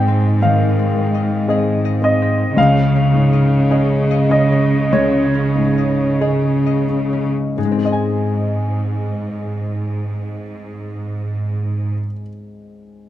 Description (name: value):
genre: cinematic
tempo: 43-57 BPM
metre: 4/4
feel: rubato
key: Ab major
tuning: A4 = 441 Hz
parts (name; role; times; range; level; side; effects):
- clear grand piano; accompaniment; 0.0-13.1 s; Db2 to Ab5; -19 LUFS; left 1 dB; none
- concert harp; arpeggios; 0.0-12.3 s; Ab2 to Ab5; -25 LUFS; left 8 dB; none
- rich studio cello section; bass; 0.0-11.9 s; Ab2 to Db3; -17 LUFS; right 1 dB; none
room: light reverb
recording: close, detailed microphones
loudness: -14 LUFS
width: side -12 dB against mid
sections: 0.0-7.6 A section; 7.6-13.0 B section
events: slowing down 0.0-7.6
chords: 0.0 Ab; 2.6 Dbsus2; 7.6 Ab